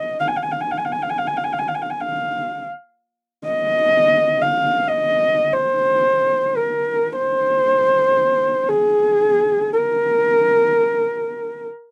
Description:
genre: mongolian traditional, Mongolian folk.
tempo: free time.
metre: none.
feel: none.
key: unclear.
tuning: A4 = 444 Hz.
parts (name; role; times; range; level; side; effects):
dark horsehead fiddle; solo; 0.0-11.7 s; Ab4 to Ab5; -19 LUFS; equal; none.
room: light reverb.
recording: dry, close 1970s-style studio recording.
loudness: -19 LUFS.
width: mono.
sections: 0.0-11.9 A section.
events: none.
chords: none.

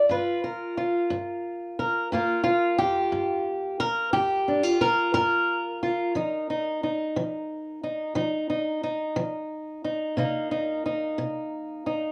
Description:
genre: acoustic country blues, solo or duo.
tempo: 60 BPM (dotted quarters).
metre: 12/8.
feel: straight.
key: unclear.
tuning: A4 = 438 Hz.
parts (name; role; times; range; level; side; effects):
fingerpicked old ladder-braced acoustic guitar; solo; 0.0-12.1 s; G2 to D5; -27 LUFS; equal; none.
room: moderate booth ambience, RT60 0.2 s.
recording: small room ambience.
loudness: -27 LUFS.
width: mono.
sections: 0.0-12.1 A section.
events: none.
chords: 0.0 Gm7; 6.2 F7sus4; 10.2 Cm7.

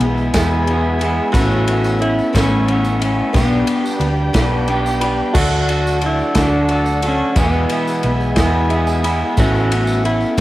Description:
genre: folk rock and heartland rock.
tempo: 60 BPM (dotted quarters).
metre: 6/8.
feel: straight.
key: A major.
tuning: A4 = 436 Hz.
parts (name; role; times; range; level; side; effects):
pedal steel guitar; melody; 0.0-10.4 s; B3 to F#4; -21 LUFS; equal; cassette tape.
clear baby grand piano; accompaniment; 0.0-10.4 s; A3 to B5; -28 LUFS; right 3 dB; none.
picked twelve-string acoustic guitar; accompaniment; 0.0-10.4 s; E2 to B4; -25 LUFS; left 2 dB; none.
bright tonewheel organ; sustained chords; 0.0-10.4 s; D3 to A4; -28 LUFS; left 1 dB; none.
electric guitar through a small old amp; riff; 0.0-10.4 s; E2 to B4; -19 LUFS; right 1 dB; none.
hollow-body short-scale picked electric bass; bass; 0.0-10.4 s; A1 to E2; -19 LUFS; equal; none.
natural country drum kit; drums; 0.0-10.4 s; crash cymbal, kick drum, ride cymbal, snare drum; -21 LUFS; equal; cassette tape.
tambourine; percussion; 0.2-10.4 s; none; -36 LUFS; right 2 dB; none.
room: light reverb, studio reverb.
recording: home recording on cassette.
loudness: -14 LUFS.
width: side -16 dB against mid.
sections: 0.0-10.4 A section.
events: grand piano fill 4.4-5.4, 8.4-9.4.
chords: 0.0 E; 1.3 Aadd9; 3.3 G/B; 5.4 D; 7.4 E; 9.4 Aadd9.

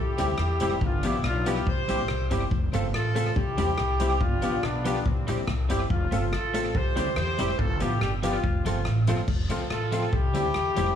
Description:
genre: ska.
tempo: 142 BPM.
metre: 4/4.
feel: straight.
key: F major.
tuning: A4 = 440 Hz.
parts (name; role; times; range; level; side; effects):
warm horn section; melody; 0.0-11.0 s; G3 to C5; -30 LUFS; equal; tape echo, plate reverb.
upright bass; bass; 0.0-10.9 s; F1 to E2; -28 LUFS; equal; none.
clean electric guitar; accompaniment; 0.2-10.9 s; F3 to A4; -33 LUFS; right 4 dB; ensemble chorus, plate reverb.
bright upright piano; stabs; 0.2-10.9 s; B3 to A4; -32 LUFS; left 6 dB; plate reverb.
swinging big-band drum kit; drums; 0.2-10.9 s; crash cymbal, hi-hat, kick drum, rim click; -30 LUFS; left 1 dB; tape echo.
room: light reverb.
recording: vinyl crackle, studio ambience.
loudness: -23 LUFS.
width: side -9 dB against mid.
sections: 0.0-9.3 A section; 9.3-11.0 A section.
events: none.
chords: 0.0 C; 0.8 G7; 1.7 C; 2.5 F; 3.4 C; 4.2 G7; 5.1 C; 5.9 F; 6.7 C; 7.6 G7; 8.4 F; 10.1 C.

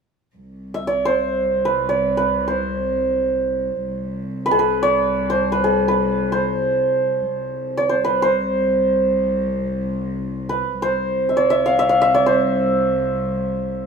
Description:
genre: Persian modal ensemble.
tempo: free time.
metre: none.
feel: none.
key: C dastgah chahargah.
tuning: A4 = 441 Hz.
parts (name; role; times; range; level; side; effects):
warm studio cello section; drone; 0.3-13.9 s; C2; -25 LUFS; left 1 dB; none.
santur; melody; 0.7-13.9 s; Ab4+45c to F5; -18 LUFS; right 1 dB; none.
room: light reverb.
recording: minimal, uncompressed stereo recording.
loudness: -17 LUFS.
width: side -6 dB against mid.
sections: 0.4-13.9 A section.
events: none.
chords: none.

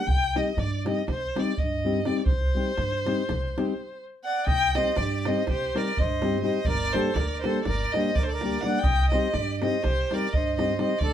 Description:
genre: balkan folk, Balkan wedding band.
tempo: 247 BPM (eighths).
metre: 9/8.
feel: straight.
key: C minor.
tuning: A4 = 442 Hz.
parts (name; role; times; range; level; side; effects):
warm violin; melody; 0.0-11.1 s; C5 to G5; -28 LUFS; left 1 dB; none.
upright bass; bass; 0.1-11.1 s; G1 to G2; -29 LUFS; right 1 dB; none.
davul; percussion; 0.1-11.1 s; none; -30 LUFS; right 1 dB; none.
nylon-string guitar; accompaniment; 0.4-10.9 s; G3 to G4; -28 LUFS; left 3 dB; none.
accordion; second line; 4.3-11.1 s; G4 to Eb5; -33 LUFS; right 4 dB; none.
room: wet small room reverb, RT60 0.6 s.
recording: band playing live in one room.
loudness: -23 LUFS.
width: side -10 dB against mid.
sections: 0.0-4.5 A section; 4.5-11.1 A section.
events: stop 3.7-4.5.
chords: 0.1 Cm; 6.7 Gm; 8.8 Cm.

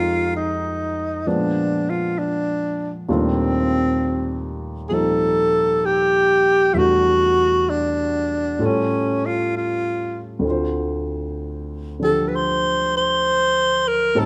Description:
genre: jazz ballad.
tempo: 65 BPM.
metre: 4/4.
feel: swing 67% on 8ths.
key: unclear.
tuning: A4 = 440 Hz.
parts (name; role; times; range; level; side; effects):
breathy alto saxophone; melody; 0.0-14.3 s; C4 to C5; -21 LUFS; equal; none.
dark grand piano; accompaniment; 0.0-14.3 s; D2 to C5; -26 LUFS; equal; none.
room: moderate large studio reverb, RT60 1.1 s.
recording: none.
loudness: -20 LUFS.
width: mono.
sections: 0.0-14.3 A section.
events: none.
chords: 0.0 Fm9; 1.3 Bb7b9; 3.1 Ebmaj9#11; 6.7 Em11; 8.6 A7b13; 10.4 Dm7.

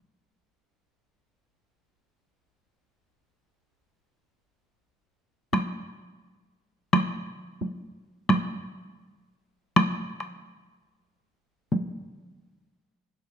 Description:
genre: japanese traditional.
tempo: 52-90 BPM.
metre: 2/4.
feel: rubato.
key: none.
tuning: none.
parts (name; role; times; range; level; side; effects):
taiko ensemble; percussion; 5.5-12.2 s; none; -23 LUFS; equal; none.
room: wet recital hall reverb, RT60 1.4 s.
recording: minimal, uncompressed stereo recording.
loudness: -25 LUFS.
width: side -8 dB against mid.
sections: 0.0-11.7 A section; 11.7-13.3 B section.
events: slowing down 8.3-11.7.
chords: none.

